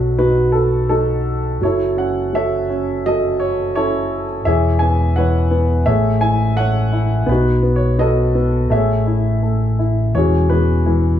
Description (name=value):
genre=acoustic folk-pop ballad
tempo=84 BPM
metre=4/4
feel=straight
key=E major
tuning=A4 = 440 Hz
part: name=warm upright piano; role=melody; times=0.0-11.2 s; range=B2 to G#5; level=-17 LUFS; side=equal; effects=none
part: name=fingered electric bass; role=bass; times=0.0-11.2 s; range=E1 to B1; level=-18 LUFS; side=equal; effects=none
room=moderate studio reverb, RT60 0.5 s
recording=studio reverb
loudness=-14 LUFS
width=side -10 dB against mid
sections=0.0-10.1 A section; 10.1-11.2 B section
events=none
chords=0.0 B7; 1.6 F#m7; 4.5 E6; 5.9 Amaj7; 7.3 B7; 8.7 Amaj7; 10.1 Eadd9